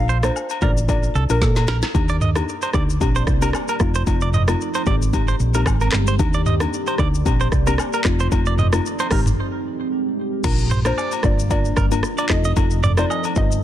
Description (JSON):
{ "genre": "afrobeats", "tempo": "113 BPM", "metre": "4/4", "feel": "swing 55% on 16ths", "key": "Bb major", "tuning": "A4 = 441 Hz", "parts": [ { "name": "hollow square pluck", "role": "melody", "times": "0.0-1.8, 10.9-13.5 s", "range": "A4 to Eb5", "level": "-27 LUFS", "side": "equal", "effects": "chorus, digital delay" }, { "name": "soft round pluck", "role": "accompaniment", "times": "0.0-13.5 s", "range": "Ab3 to Bb4", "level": "-27 LUFS", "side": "left 6 dB", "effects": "chorus" }, { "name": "hollow-body short-scale fingered electric bass", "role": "bass", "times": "0.0-13.6 s", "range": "F1 to Bb2", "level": "-20 LUFS", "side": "equal", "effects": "none" }, { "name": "direct-recorded clean electric guitar", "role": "riff", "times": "0.1-13.2 s", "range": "A4 to Eb5", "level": "-27 LUFS", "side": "right 6 dB", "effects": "digital delay" }, { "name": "afro-pop drum kit", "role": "drums", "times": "0.1-13.6 s", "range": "crash cymbal, handclaps, hi-hat, kick drum, rim click, shaker, snare drum, toms", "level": "-21 LUFS", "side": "equal", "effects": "soft clipping on snare, vintage 12-bit sampler grit" }, { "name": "agogo bells and woodblock", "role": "percussion", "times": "0.2-13.4 s", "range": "none", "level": "-30 LUFS", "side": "left 7 dB", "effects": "none" }, { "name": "deep dark ambient pad", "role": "sustained chords", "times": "2.6-13.6 s", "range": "F3 to D5", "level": "-28 LUFS", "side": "right 1 dB", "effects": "chorus, built-in reverb" } ], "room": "little or no reverb", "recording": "dense, heavily limited modern master", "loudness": "-17 LUFS", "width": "side -12 dB against mid", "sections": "0.0-1.9 A section; 1.9-10.4 B section; 10.4-13.6 C section", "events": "drum fill 1.4-1.9; break 9.4-10.4", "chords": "0.0 Bbmaj7; 1.9 Ebmaj7; 3.0 Bb69; 3.8 F7; 4.9 Abmaj7; 6.2 Ebmaj7; 7.3 Bb69; 8.1 F7; 9.1 Abmaj7; 10.4 Bb; 12.3 F7", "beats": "0.35 0.88 1.42 | 1.95 2.48 3.01 3.54 | 4.07 4.60 5.13 5.66 | 6.19 6.72 7.26 7.79 | 8.32 8.85 9.38 9.91 | 10.44 10.97 11.50 12.04 | 12.57 13.10 13.63" }